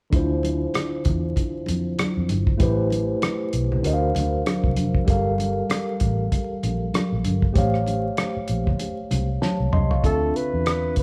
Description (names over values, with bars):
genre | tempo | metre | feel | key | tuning
lush 1970s-style soul | 97 BPM | 4/4 | swing 58% on 16ths | unclear | A4 = 440 Hz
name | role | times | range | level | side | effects
tine electric piano | accompaniment | 0.1-11.0 s | D3 to C#6 | -28 LUFS | equal | none
vintage muted fingered electric bass | bass | 0.1-11.0 s | E#1 to F2 | -28 LUFS | equal | none
cloth-damped thuddy drum kit | drums | 0.1-11.0 s | hi-hat, kick drum, rim click, snare drum, toms | -26 LUFS | equal | none
congas | percussion | 0.1-9.9 s | none | -33 LUFS | equal | none
breathy flugelhorn | melody | 10.1-11.0 s | A4 to C5 | -26 LUFS | equal | none
room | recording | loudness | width
moderate large studio reverb, RT60 1.2 s | band playing live in one room, vinyl crackle | -23 LUFS | mono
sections
0.1-10.0 A section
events
drum fill 9.4-10.0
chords
0.1 Dm9; 2.6 Am9; 3.8 D7alt; 5.1 Gm9; 7.6 A7alt; 10.0 Dm9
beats
| 0.12 0.74 1.36 1.98 | 2.60 3.22 3.84 4.46 | 5.08 5.70 6.32 6.94 | 7.56 8.18 8.79 9.41 | 10.04 10.65